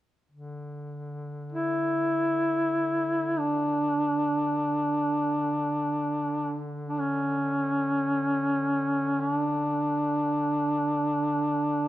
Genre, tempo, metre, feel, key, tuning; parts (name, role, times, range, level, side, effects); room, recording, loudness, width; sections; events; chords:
caucasian folk, Caucasian lament; free time; A4 = 440 Hz
mellow duduk; drone; 0.3-11.9 s; D3; -36 LUFS; left 1 dB
mellow duduk; melody; 1.5-11.9 s; C#4 to E4; -25 LUFS; equal
light reverb; close, detailed microphones; -25 LUFS; side -14 dB against mid
0.3-11.9 A section